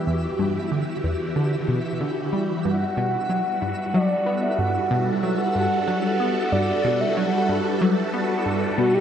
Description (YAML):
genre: ambient, sequencer-driven space music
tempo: 93 BPM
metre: 4/4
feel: straight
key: unclear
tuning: A4 = 440 Hz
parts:
  - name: phased string machine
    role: sustained chords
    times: 0.0-9.0 s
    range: E3 to E5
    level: -25 LUFS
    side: equal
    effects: ensemble chorus, phaser
  - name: twinkling granular texture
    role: texture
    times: 0.0-9.0 s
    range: E4 to E5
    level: -35 LUFS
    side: right 2 dB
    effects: built-in reverb
  - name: tight sequenced synth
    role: riff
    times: 0.1-9.0 s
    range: E2 to B3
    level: -25 LUFS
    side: equal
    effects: chorus, phaser, vintage 12-bit sampler grit, analog delay
  - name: mellow horn-like synth lead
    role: melody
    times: 2.6-9.0 s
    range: F#4 to F#5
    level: -25 LUFS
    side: equal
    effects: chorus, analog delay
room: wet plate reverb, RT60 3.3 s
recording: echo-heavy mix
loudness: -20 LUFS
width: side -8 dB against mid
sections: 0.0-9.0 A section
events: fade-in on synth texture 0.0-9.0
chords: 0.0 Emadd9; 2.7 Gmaj7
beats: | 0.07 0.71 1.36 2.01 | 2.65 3.30 3.94 4.59 | 5.23 5.88 6.52 7.17 | 7.81 8.46